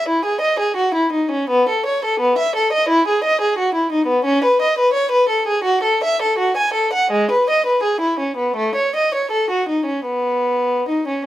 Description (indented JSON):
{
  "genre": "classical, baroque-style suite movement for unaccompanied violin",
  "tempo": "75-90 BPM",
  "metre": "4/4",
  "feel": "rubato",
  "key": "E major",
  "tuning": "A4 = 441 Hz",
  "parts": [
    { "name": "rich violin", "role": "solo", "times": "0.0-11.3 s", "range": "G#3 to G#5", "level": "-16 LUFS", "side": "equal", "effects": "none" }
  ],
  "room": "light reverb",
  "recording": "none",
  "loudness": "-15 LUFS",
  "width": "side -14 dB against mid",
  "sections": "0.0-11.3 A section",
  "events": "none",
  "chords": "none"
}